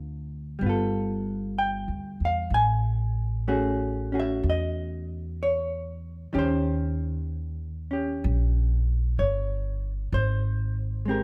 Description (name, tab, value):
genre	jazz ballad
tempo	63 BPM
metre	4/4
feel	swing 69% on 8ths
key	unclear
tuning	A4 = 444 Hz
part	vintage hollow-body jazz guitar	accompaniment	0.0-11.2 s	D3 to Ab5	-30 LUFS	equal	none
part	upright bass	bass	0.0-11.2 s	G1 to Fb2	-30 LUFS	equal	none
room	light reverb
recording	none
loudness	-27 LUFS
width	mono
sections	0.0-11.2 A section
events	none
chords	0.0 Dm7; 0.6 G9; 2.5 A6; 6.3 Eb6; 10.1 Abmaj7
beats	0.60 1.56 | 2.52 3.47 4.43 5.38 | 6.33 7.28 8.23 9.18 | 10.13 11.08